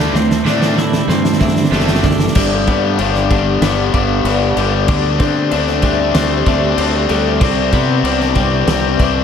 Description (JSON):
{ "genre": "post-rock", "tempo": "95 BPM", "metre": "4/4", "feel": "straight", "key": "G major", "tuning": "A4 = 440 Hz", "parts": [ { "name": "ethereal airy pad", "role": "sustained chords", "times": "0.0-9.2 s", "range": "C3 to A5", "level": "-24 LUFS", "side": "right 1 dB", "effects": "ensemble chorus, built-in reverb" }, { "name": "felt-muted upright piano", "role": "arpeggios", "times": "0.0-9.2 s", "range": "A4 to E5", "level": "-28 LUFS", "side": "right 4 dB", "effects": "wide subtle chorus, diffuse ambient delay" }, { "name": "twelve-string electric guitar", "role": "arpeggios", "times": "0.0-9.2 s", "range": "C3 to E4", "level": "-20 LUFS", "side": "left 1 dB", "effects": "diffuse ambient delay" }, { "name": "distorted electric guitar", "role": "riff", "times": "0.0-2.3 s", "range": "D3 to D4", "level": "-21 LUFS", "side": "right 9 dB", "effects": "overdrive" }, { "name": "raw garage guitar", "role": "riff", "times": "0.0-9.2 s", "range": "G2 to D4", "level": "-18 LUFS", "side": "left 8 dB", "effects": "overdrive" }, { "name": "growling fingered electric bass", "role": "bass", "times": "0.0-9.2 s", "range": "F#1 to D3", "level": "-19 LUFS", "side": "equal", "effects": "overdrive" }, { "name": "loose indie drum kit", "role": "drums", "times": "0.1-9.1 s", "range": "crash cymbal, kick drum, snare drum", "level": "-18 LUFS", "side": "equal", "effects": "none" } ], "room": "wet cathedral reverb, RT60 5.0 s", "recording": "dreamy mix soaked in reverb", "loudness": "-12 LUFS", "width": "side -7 dB against mid", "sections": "0.0-2.4 A section; 2.4-9.2 B section", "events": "build-up 0.0-2.4; drum fill 0.0-2.4", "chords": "0.0 D9sus4; 2.4 Gmaj7; 4.9 D9sus4; 7.4 Cmaj9" }